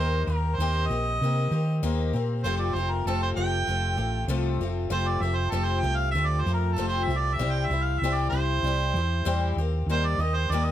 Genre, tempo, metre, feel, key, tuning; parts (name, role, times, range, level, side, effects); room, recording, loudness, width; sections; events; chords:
folk rock and heartland rock; 96 BPM; 4/4; straight; A4 = 444 Hz
mellow harmonica; melody; 0.0-10.7 s; A4 to G5; -29 LUFS; right 3 dB; plate reverb
picked twelve-string acoustic guitar; accompaniment; 0.0-10.7 s; F2 to G4; -30 LUFS; left 6 dB
hollow-body short-scale fingered electric bass; bass; 0.0-10.7 s; F1 to Eb3; -26 LUFS; right 1 dB
light reverb; -24 LUFS; side -11 dB against mid
0.0-10.7 A section
0.0 Eb6; 2.4 Fadd9; 7.4 C; 9.6 Eb6